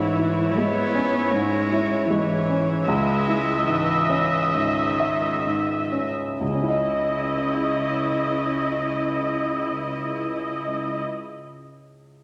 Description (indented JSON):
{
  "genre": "cinematic",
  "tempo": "61-80 BPM",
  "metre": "4/4",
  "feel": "rubato",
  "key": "C# minor",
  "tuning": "A4 = 438 Hz",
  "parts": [
    { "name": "warm cello", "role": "melody", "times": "0.0-11.0 s", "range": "C#3 to B3", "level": "-30 LUFS", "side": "equal", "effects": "none" },
    { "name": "dark symphonic viola section", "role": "accompaniment", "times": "0.0-11.0 s", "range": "E4 to E5", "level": "-27 LUFS", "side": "equal", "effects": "none" },
    { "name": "warm baby grand piano", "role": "accompaniment", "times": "0.0-12.2 s", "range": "C#2 to E5", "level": "-28 LUFS", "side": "equal", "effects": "none" },
    { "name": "warm symphonic cello section", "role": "bass", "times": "0.0-11.0 s", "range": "C#2 to G#2", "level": "-36 LUFS", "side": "equal", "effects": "none" }
  ],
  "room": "wet scoring stage reverb, RT60 1.7 s",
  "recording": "none",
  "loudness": "-23 LUFS",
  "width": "mono",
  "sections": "0.0-6.4 A section; 6.4-10.2 B section",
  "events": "slowing down 0.0-6.4",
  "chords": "0.0 E6/G#; 2.9 C#madd9"
}